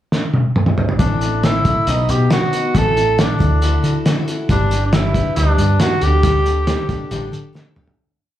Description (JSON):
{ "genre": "folk rock and heartland rock", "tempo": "137 BPM", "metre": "4/4", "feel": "straight", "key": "unclear", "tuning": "A4 = 440 Hz", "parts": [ { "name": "cloth-damped thuddy drum kit", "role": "drums", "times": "0.1-8.0 s", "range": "hi-hat, kick drum, snare drum, toms", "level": "-18 LUFS", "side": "equal", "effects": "none" }, { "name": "warm tenor saxophone", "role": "melody", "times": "1.0-7.5 s", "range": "D4 to A4", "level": "-19 LUFS", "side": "equal", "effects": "plate reverb, slapback echo" }, { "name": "picked steel-string acoustic guitar", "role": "accompaniment", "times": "1.0-8.0 s", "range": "A2 to B4", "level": "-24 LUFS", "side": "left 5 dB", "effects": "plate reverb, slapback echo" }, { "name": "hollow-body short-scale fingered electric bass", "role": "bass", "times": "1.0-7.5 s", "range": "G1 to D3", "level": "-18 LUFS", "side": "equal", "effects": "none" } ], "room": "light reverb", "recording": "live gig heard through the venue's PA, club reverb", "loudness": "-14 LUFS", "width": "side -12 dB against mid", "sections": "0.0-1.0 pickup bar; 1.0-8.0 pre-chorus", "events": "drum fill 0.1-1.0, 7.5-8.0; fade-out 6.2-8.0", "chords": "0.0 N.C.; 1.0 Am; 1.9 B; 2.8 Am; 3.4 Dadd9; 4.5 G; 6.0 Dsus4" }